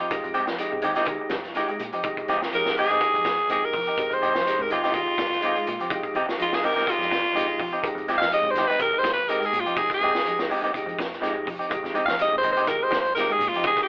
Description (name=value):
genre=afrobeat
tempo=124 BPM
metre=4/4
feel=swing 54% on 16ths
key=F minor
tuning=A4 = 440 Hz
part: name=raspy alto saxophone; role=melody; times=0.0-13.9 s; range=F4 to F5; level=-22 LUFS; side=equal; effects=none
part: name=semi-hollow electric guitar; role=arpeggios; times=0.0-13.7 s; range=C3 to Ab3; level=-41 LUFS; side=equal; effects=spring reverb
part: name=semi-hollow electric guitar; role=stabs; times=0.0-13.8 s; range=Ab3 to G4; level=-28 LUFS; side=equal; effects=spring reverb
part: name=vintage drum kit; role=drums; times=0.0-13.9 s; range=hi-hat, kick drum, snare drum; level=-30 LUFS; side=equal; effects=none
part: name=percussive tonewheel organ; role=accompaniment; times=0.1-13.9 s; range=Ab3 to G4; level=-31 LUFS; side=equal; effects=slow rotary speaker
part: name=deep dub fingered electric bass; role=bass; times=0.1-13.8 s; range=C2 to Bb2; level=-42 LUFS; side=equal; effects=none
part: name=congas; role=percussion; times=11.7-13.8 s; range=none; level=-39 LUFS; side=equal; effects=none
part: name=shekere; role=percussion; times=11.7-13.8 s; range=none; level=-45 LUFS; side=equal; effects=none
room=moderate small room reverb, RT60 0.6 s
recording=band playing live in one room, telephone sound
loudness=-21 LUFS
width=side -35 dB against mid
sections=0.0-13.9 A section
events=alto saxophone solo 0.0-13.9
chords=0.0 Fm9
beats=| 0.11 0.59 1.08 1.56 | 2.04 2.53 3.01 3.49 | 3.98 4.46 4.94 5.42 | 5.91 6.39 6.87 7.36 | 7.84 8.32 8.81 9.29 | 9.77 10.26 10.74 11.22 | 11.71 12.19 12.67 13.16 | 13.64